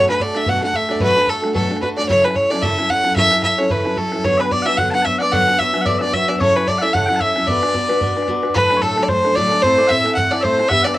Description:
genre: celtic folk, Celtic reel.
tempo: 223 BPM.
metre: 4/4.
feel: swing 56% on 8ths.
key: B minor.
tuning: A4 = 440 Hz.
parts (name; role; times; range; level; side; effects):
clear fiddle; melody; 0.0-11.0 s; A4 to F#5; -16 LUFS; equal; cassette tape.
picked steel-string acoustic guitar; accompaniment; 0.0-11.0 s; D2 to B4; -21 LUFS; equal; cassette tape.
bodhran; percussion; 0.0-10.9 s; none; -26 LUFS; right 1 dB; none.
mellow small bagpipes; second line; 4.2-11.0 s; A4 to A5; -21 LUFS; left 2 dB; cassette tape.
room: moderate booth ambience, RT60 0.2 s.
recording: home recording on cassette.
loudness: -14 LUFS.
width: side -16 dB against mid.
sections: 0.0-8.6 A section; 8.6-11.0 B section.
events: none.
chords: 0.0 Bm7; 2.1 F#m7; 4.2 Gmaj7; 6.4 F#m7; 7.5 Bm; 8.6 D; 9.6 Am.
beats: 0.20 0.47 0.74 | 1.01 1.28 1.55 1.82 | 2.09 2.36 2.63 2.90 | 3.17 3.44 3.71 3.97 | 4.24 4.51 4.78 5.05 | 5.32 5.59 5.86 6.13 | 6.40 6.67 6.94 7.21 | 7.48 7.75 8.02 8.28 | 8.55 8.82 9.09 9.36 | 9.63 9.90 10.17 10.44 | 10.71 10.98.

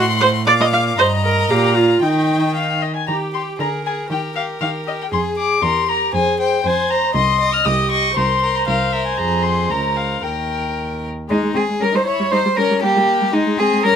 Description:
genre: quick classical-period movement for string quartet.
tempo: 118 BPM.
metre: 2/4.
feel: straight.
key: Eb major, Ab major from 7.1 s.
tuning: A4 = 441 Hz.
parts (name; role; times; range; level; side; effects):
dark violin; melody; 0.0-13.9 s; Ab3 to F6; -20 LUFS; left 5 dB; none.
rich violin; second line; 0.0-14.0 s; Eb4 to D6; -23 LUFS; left 4 dB; none.
warm viola; accompaniment; 0.0-13.9 s; G3 to F5; -20 LUFS; right 2 dB; none.
rich cello; bass; 0.0-14.0 s; C2 to Db5; -21 LUFS; right 2 dB; none.
room: light reverb.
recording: close, detailed microphones.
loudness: -15 LUFS.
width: side -8 dB against mid.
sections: 0.0-3.1 A section; 3.1-11.3 B section; 11.3-14.0 A section.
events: none.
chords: 0.5 Bb; 1.0 Eb/G; 1.5 Bb5; 2.0 Eb; 3.6 Bb7/D; 4.1 Eb; 5.1 Fm; 5.6 C7/E; 6.1 Fm; 7.1 Cm; 8.2 C7(no3); 9.2 Fm; 9.7 Bbm/Db; 10.2 Eb; 11.3 Ab5; 11.8 Gdim7; 12.3 Gmadd11; 13.3 Ab.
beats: 0.48 | 0.99 1.51 | 2.03 2.56 | 3.08 3.60 | 4.11 4.61 | 5.12 5.62 | 6.13 6.64 | 7.15 7.66 | 8.17 8.68 | 9.19 9.71 | 10.24 10.77 | 11.30 11.81 | 12.32 12.83 | 13.34 13.84.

